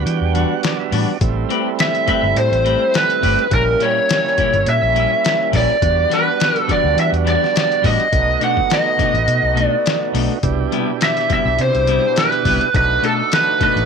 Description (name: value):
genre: straight-eighth soul blues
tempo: 104 BPM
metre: 4/4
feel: swing 55% on 16ths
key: E minor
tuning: A4 = 440 Hz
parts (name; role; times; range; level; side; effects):
- tonewheel organ; accompaniment; 0.0-13.9 s; B2 to G5; -23 LUFS; right 15 dB; slow rotary speaker, overdrive
- vintage muted fingered electric bass; bass; 0.0-13.9 s; G1 to E3; -19 LUFS; equal; none
- trip hop sampler-style drum kit; drums; 0.1-13.9 s; hi-hat, kick drum, snare drum; -22 LUFS; left 3 dB; none
- clean electric guitar; stabs; 0.3-13.8 s; A#2 to B4; -24 LUFS; left 13 dB; none
- lead guitar through a small cranked amp; melody; 1.8-13.9 s; A4 to F#5; -16 LUFS; equal; overdrive
room: light reverb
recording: 1960s-style stereo with parts hard left and right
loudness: -14 LUFS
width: side -6 dB against mid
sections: 0.0-13.9 A section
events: tonewheel organ fill 0.0-1.2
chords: 0.0 Em9; 1.2 Am9; 3.5 A#dim7; 5.8 Em9; 8.1 B7#9; 10.4 Cmaj7; 12.7 B7#9